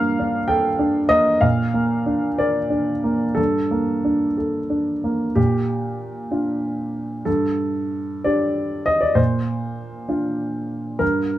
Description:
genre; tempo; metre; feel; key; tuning
neoclassical minimalist piano; 60-66 BPM (dotted quarters); 6/8; rubato; Bb major; A4 = 440 Hz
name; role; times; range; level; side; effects
warm upright piano; solo; 0.0-11.4 s; G2 to G5; -19 LUFS; equal; none
room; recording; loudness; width
moderate studio reverb, RT60 0.6 s; dark, warm production; -19 LUFS; side -13 dB against mid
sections
0.0-5.4 A section; 5.4-11.4 B section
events
none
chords
0.0 Gmadd9; 1.4 Bb; 3.4 Gmadd9; 5.4 Bb; 7.3 Gsus2; 9.2 Bb

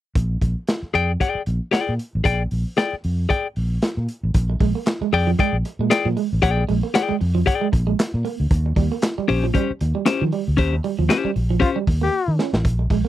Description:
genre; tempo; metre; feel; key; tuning
funk; 115 BPM; 4/4; swing 56% on 16ths; Bb mixolydian; A4 = 440 Hz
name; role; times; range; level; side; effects
fingered electric bass; bass; 0.2-13.0 s; A1 to Eb3; -21 LUFS; equal; tube saturation
crunchy breakbeat drum kit; drums; 0.2-13.0 s; handclaps, hi-hat, kick drum, snare drum; -20 LUFS; equal; none
semi-hollow electric guitar; accompaniment; 0.9-11.8 s; Db4 to G5; -20 LUFS; left 6 dB; none
electric guitar at the edge of break-up; riff; 4.5-13.1 s; F3 to Db4; -25 LUFS; right 10 dB; none
brilliant trombone; second line; 11.6-12.3 s; F4 to G4; -21 LUFS; left 5 dB; none
room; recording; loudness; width
little or no reverb; dry, close 1970s-style studio recording; -18 LUFS; side -13 dB against mid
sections
0.1-4.3 A section; 4.3-13.1 B section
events
band accent 10.6-12.6; drum fill 12.1-12.6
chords
0.1 Bb6; 8.5 Eb13

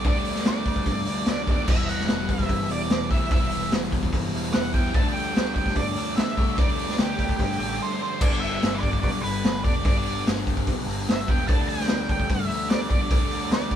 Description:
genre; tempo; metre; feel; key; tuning
classic rock; 147 BPM; 4/4; straight; unclear; A4 = 440 Hz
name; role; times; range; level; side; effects
octave-fuzz lead guitar; melody; 0.0-13.8 s; G4 to A5; -30 LUFS; right 2 dB; distortion
tonewheel organ; sustained chords; 0.0-13.8 s; D4 to B4; -41 LUFS; right 2 dB; none
biting overdriven guitar; riff; 0.0-13.8 s; E2 to D4; -35 LUFS; right 1 dB; phaser
overdriven semi-hollow guitar; riff; 0.0-13.8 s; G2 to E4; -31 LUFS; left 6 dB; spring reverb
overdriven semi-hollow guitar; riff; 0.0-8.2 s; D3 to E4; -34 LUFS; right 5 dB; none
growling picked electric bass; bass; 0.0-13.8 s; E1 to G2; -33 LUFS; equal; overdrive
raw garage drum kit; drums; 0.0-13.8 s; crash cymbal, hi-hat, kick drum, snare drum; -24 LUFS; equal; none
room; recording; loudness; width
light reverb; band playing live in one room; -22 LUFS; side -10 dB against mid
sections
0.0-8.2 A section; 8.2-13.8 A section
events
break 7.8-8.2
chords
0.0 Dsus4; 1.7 Emadd9; 4.9 Dsus4; 8.2 G; 11.5 Dsus4

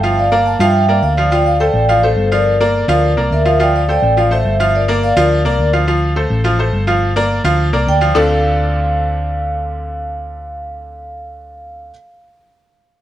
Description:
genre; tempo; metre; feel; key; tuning
latin, salsa; 210 BPM; 4/4; straight; D minor; A4 = 440 Hz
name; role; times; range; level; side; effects
vibraphone with soft mallets; melody; 0.0-5.7, 7.9-11.9 s; A4 to A5; -16 LUFS; equal; none
bright upright piano; accompaniment; 0.0-11.9 s; D3 to F5; -17 LUFS; equal; none
hollow-body short-scale fingered electric bass; bass; 0.0-11.9 s; G1 to G2; -17 LUFS; equal; none
room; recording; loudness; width
light reverb; none; -12 LUFS; side -12 dB against mid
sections
0.0-3.6 A section; 3.6-8.2 B section; 8.2-10.4 C section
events
none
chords
0.2 Gm7; 1.3 Dm7; 2.5 Gm7; 3.6 Dm7; 4.7 Gm7; 5.9 Dm7; 7.0 Gm7; 8.2 Dm7

